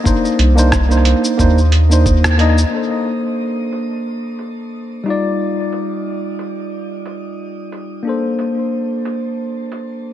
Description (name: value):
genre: sunset chillout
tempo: 90 BPM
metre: 4/4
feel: swing 56% on 16ths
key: Bb major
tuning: A4 = 441 Hz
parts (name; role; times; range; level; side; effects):
- tine electric piano; accompaniment; 0.0-10.1 s; G3 to Eb5; -18 LUFS; moving between left 4 dB and right 4 dB; auto-pan, tape echo, shimmer reverb
- dusty soul sampler-style drum kit; drums; 0.1-9.9 s; cabasa, hi-hat, rim click; -22 LUFS; right 1 dB; low-pass filter on perc, low-pass filter on hats, low-pass filter on snare, low-pass filter on room, analog delay
- electronic kick drum; drums; 0.1-2.2 s; none; -17 LUFS; equal; none
- round analog bass; bass; 0.4-2.6 s; C2 to Eb2; -12 LUFS; equal; none
room: moderate plate reverb, RT60 2.2 s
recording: echo-heavy mix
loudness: -14 LUFS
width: side -12 dB against mid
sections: 0.0-2.7 A section; 2.7-10.1 B section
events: band accent 2.2-2.6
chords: 0.0 Cm9; 2.7 Bbmaj9; 5.1 Ebmaj9; 8.1 Bbmaj9